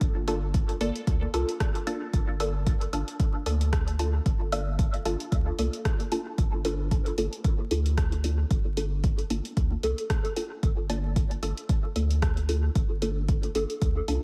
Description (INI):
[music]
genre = dub techno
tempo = 113 BPM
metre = 4/4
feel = swing 56% on 16ths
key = G minor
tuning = A4 = 441 Hz
[part]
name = round analog bass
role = bass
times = 0.0-14.2 s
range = G1 to D2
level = -31 LUFS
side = equal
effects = sidechain pumping
[part]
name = deep house drum kit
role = drums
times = 0.0-14.2 s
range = hi-hat, rim click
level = -40 LUFS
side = equal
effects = dub echo
[part]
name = electronic kick drum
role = drums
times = 0.0-13.9 s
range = none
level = -28 LUFS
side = equal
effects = none
[part]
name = filtered dub chord stab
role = stabs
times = 0.3-14.2 s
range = Bb3 to A4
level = -34 LUFS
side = equal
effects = phaser, sidechain pumping, dub echo
[sound]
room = light reverb, digital ambience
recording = vinyl crackle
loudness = -27 LUFS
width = mono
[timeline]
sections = 0.0-14.2 A section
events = filter sweep on synth stab 0.0-14.2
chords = 0.0 Gm7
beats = | 0.01 0.54 1.07 1.60 | 2.13 2.67 3.20 3.73 | 4.26 4.79 5.32 5.85 | 6.38 6.91 7.44 7.97 | 8.51 9.04 9.57 10.10 | 10.63 11.16 11.69 12.22 | 12.75 13.29 13.82